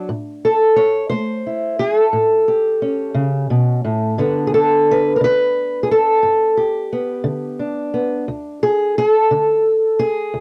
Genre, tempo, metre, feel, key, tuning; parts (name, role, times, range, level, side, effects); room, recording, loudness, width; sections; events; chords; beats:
acoustic country blues, solo or duo; 59 BPM (dotted quarters); 12/8; straight; A4 = 440 Hz
fingerpicked old ladder-braced acoustic guitar; solo; 0.0-10.4 s; D2 to C#5; -17 LUFS; equal; cassette tape
moderate booth ambience, RT60 0.2 s; home recording on cassette; -17 LUFS; mono
0.0-10.4 A section
0.1 A; 4.2 G; 8.3 D5
| 0.09 1.11 2.14 3.16 | 4.18 5.21 6.23 7.26 | 8.28 9.31 10.33